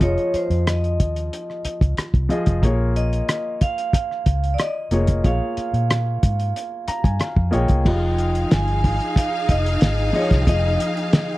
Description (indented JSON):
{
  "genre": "lush 1970s-style soul",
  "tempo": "92 BPM",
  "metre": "4/4",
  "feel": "straight",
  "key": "F minor",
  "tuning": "A4 = 439 Hz",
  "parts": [
    { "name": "vibraphone with medium hard mallets", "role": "melody", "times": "0.0-11.4 s", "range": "C5 to Ab5", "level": "-26 LUFS", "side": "right 1 dB", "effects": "none" },
    { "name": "warm grand piano", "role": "accompaniment", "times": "0.0-11.4 s", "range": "F3 to Bb5", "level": "-26 LUFS", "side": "left 1 dB", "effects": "none" },
    { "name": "vintage muted fingered electric bass", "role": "bass", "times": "0.0-10.8 s", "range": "F1 to Bb2", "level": "-21 LUFS", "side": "equal", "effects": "none" },
    { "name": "cloth-damped thuddy drum kit", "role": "drums", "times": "0.0-11.3 s", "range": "crash cymbal, hi-hat, kick drum, rim click, snare drum", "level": "-19 LUFS", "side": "equal", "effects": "none" },
    { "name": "warm studio string section", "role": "second line", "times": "7.9-11.4 s", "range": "Eb4 to F5", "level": "-26 LUFS", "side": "equal", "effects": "none" }
  ],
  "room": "little or no reverb",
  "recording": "dry, close 1970s-style studio recording",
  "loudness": "-18 LUFS",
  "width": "side -18 dB against mid",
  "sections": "0.0-7.9 A section; 7.9-11.4 B section",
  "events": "grand piano fill 6.5-7.9",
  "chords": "0.0 Fm7; 2.6 Bbm7; 7.9 Fm7"
}